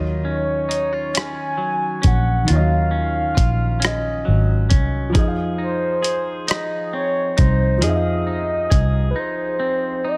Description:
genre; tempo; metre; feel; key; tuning
slow six-eight R&B; 45 BPM (dotted quarters); 6/8; straight; Eb dorian; A4 = 440 Hz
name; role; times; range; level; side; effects
clean electric guitar; second line; 0.0-10.2 s; Eb3 to Ab4; -30 LUFS; equal; none
warm concert grand piano; accompaniment; 0.0-10.2 s; Eb3 to F5; -30 LUFS; equal; none
vintage muted fingered electric bass; bass; 0.0-9.1 s; Ab1 to F2; -22 LUFS; equal; none
mellow horn-like synth lead; melody; 0.3-10.2 s; Cb5 to Ab5; -26 LUFS; equal; chorus
dusty soul sampler-style drum kit; drums; 0.7-8.9 s; hi-hat, kick drum, rim click; -20 LUFS; equal; none
room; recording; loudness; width
digital ambience; none; -20 LUFS; mono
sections
0.0-10.2 A section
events
break 9.2-10.2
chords
0.0 Ebm9; 5.2 Fm7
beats
1.15 | 2.49 3.82 | 5.15 6.49 | 7.82 9.15

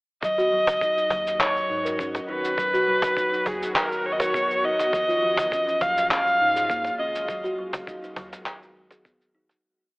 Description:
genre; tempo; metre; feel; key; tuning
organic downtempo; 102 BPM; 4/4; straight; G# dorian; A4 = 443 Hz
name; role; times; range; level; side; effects
rich kamancheh; melody; 0.2-7.5 s; G#4 to E#5; -22 LUFS; equal; tape echo
bowed-like drone; sustained chords; 1.3-9.6 s; C#3 to F#4; -34 LUFS; equal; built-in reverb, sidechain pumping
kalimba; arpeggios; 0.2-9.5 s; E#3 to A#4; -32 LUFS; equal; tape echo
warm sub bass; bass; 0.2-9.6 s; G#1 to G#2; -41 LUFS; equal; none
electronic cabasa and handclaps; drums; 0.2-9.6 s; none; -28 LUFS; equal; overdrive
electronic kick drum; drums; 0.2-9.2 s; none; -33 LUFS; equal; overdrive
cajon; percussion; 0.7-9.6 s; none; -28 LUFS; equal; none
room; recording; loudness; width
moderate lush hall reverb, RT60 2.5 s; telephone sound; -21 LUFS; side -34 dB against mid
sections
0.2-9.6 groove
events
fade-out 6.5-9.6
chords
0.2 D#m7/G#; 2.6 B/G#; 4.9 A#m7/G# (rootless); 7.3 G#m7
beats
| 0.23 0.81 1.40 1.99 | 2.58 3.17 3.76 4.34 | 4.93 5.52 6.11 6.70 | 7.29 7.87 8.46 9.05

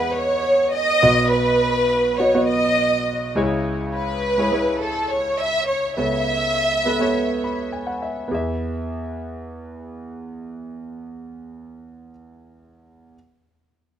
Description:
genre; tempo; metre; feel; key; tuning
piano-driven pop; 103 BPM; 4/4; straight; E major; A4 = 436 Hz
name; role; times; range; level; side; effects
rich studio violin section; melody; 0.0-7.7 s; A4 to E5; -19 LUFS; right 1 dB; plate reverb, digital delay
clear concert grand piano; accompaniment; 0.0-13.2 s; B1 to B5; -24 LUFS; right 1 dB; plate reverb
room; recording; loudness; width
moderate studio reverb, RT60 0.6 s; rough home demo mix; -18 LUFS; side -10 dB against mid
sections
0.0-8.3 A section; 8.3-10.6 B section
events
grand piano fill 7.1-8.3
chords
0.0 E; 1.0 B; 3.4 C#m; 6.0 Aadd9/C#; 8.3 E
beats
0.15 0.74 | 1.32 1.90 2.48 3.07 | 3.65 4.23 4.81 5.40 | 5.98 6.56 7.14 7.73 | 8.31 8.89 9.47 10.06

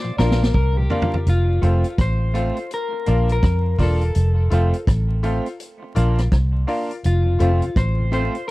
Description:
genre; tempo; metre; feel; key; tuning
roots reggae; 83 BPM; 4/4; swing 62% on 16ths; F major; A4 = 439 Hz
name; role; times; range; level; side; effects
clean electric guitar; melody; 0.0-8.5 s; F4 to D5; -27 LUFS; left 3 dB; tape echo
mellow tonewheel organ; accompaniment; 0.0-1.0, 7.3-8.2 s; F2 to F4; -31 LUFS; left 2 dB; slow rotary speaker, tape echo
semi-hollow electric guitar; accompaniment; 0.0-8.4 s; A3 to F4; -29 LUFS; right 3 dB; tape echo
bright grand piano; stabs; 0.2-8.4 s; F4 to F5; -27 LUFS; left 4 dB; none
vintage muted fingered electric bass; bass; 0.2-8.3 s; E1 to F2; -18 LUFS; equal; none
vintage drum kit; drums; 0.2-8.5 s; hi-hat, kick drum, rim click, snare drum, toms; -21 LUFS; equal; none
room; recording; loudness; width
little or no reverb; dry, close 1970s-style studio recording, vinyl crackle; -17 LUFS; side -19 dB against mid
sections
0.0-1.3 A section; 1.3-8.5 B section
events
drum fill 0.0-1.3; clean electric guitar solo 0.0-1.3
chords
0.0 Bb; 1.3 F; 2.7 Bb; 4.2 F; 5.6 Bb; 7.0 F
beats
0.55 | 1.27 2.00 2.71 3.44 | 4.16 4.88 5.60 6.32 | 7.04 7.77 8.49

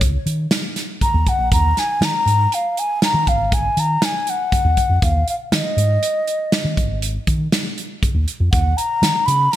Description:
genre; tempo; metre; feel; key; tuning
progressive instrumental, band music in an uneven meter; 120 BPM; 7/4; straight; Eb minor; A4 = 440 Hz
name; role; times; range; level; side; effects
baroque flute; melody; 0.0-9.6 s; Eb5 to Cb6; -19 LUFS; left 1 dB; none
fingered electric bass; bass; 0.0-9.5 s; Ab1 to Eb3; -19 LUFS; equal; none
natural country drum kit; drums; 0.0-9.6 s; hi-hat, kick drum, snare drum; -20 LUFS; right 1 dB; none
room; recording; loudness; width
moderate lush hall reverb, RT60 1.8 s, small room ambience; bright 1980s-style digital production; -16 LUFS; side -13 dB against mid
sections
0.0-9.6 A section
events
none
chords
0.0 Eb7(no3); 1.5 N.C.; 8.5 Ebm7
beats
0.01 0.51 1.01 | 1.51 2.01 2.51 3.01 3.51 4.01 4.51 | 5.01 5.52 6.02 6.52 7.02 7.52 8.02 | 8.52 9.02 9.52

